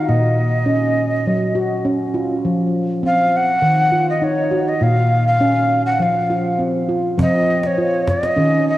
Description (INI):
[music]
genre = world meditative, meditative tuned percussion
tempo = 101 BPM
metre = 4/4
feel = straight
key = unclear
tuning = A4 = 441 Hz
[part]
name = breathy mellow jazz flute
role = melody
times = 0.0-8.8 s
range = Db5 to Gb5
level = -18 LUFS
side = equal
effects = none
[part]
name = handpan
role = arpeggios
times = 0.0-8.8 s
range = Bb2 to Gb4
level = -17 LUFS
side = equal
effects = cassette tape, tape echo
[part]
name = cajon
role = percussion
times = 7.2-8.4 s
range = none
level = -23 LUFS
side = equal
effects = none
[sound]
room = wet lush hall reverb, RT60 2.7 s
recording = home recording on cassette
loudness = -15 LUFS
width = side -15 dB against mid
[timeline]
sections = 0.0-7.2 A section; 7.2-8.8 B section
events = none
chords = 0.1 Bbm; 1.3 Gb5; 2.4 F5; 3.6 Ebm; 4.8 Bbm; 6.0 F5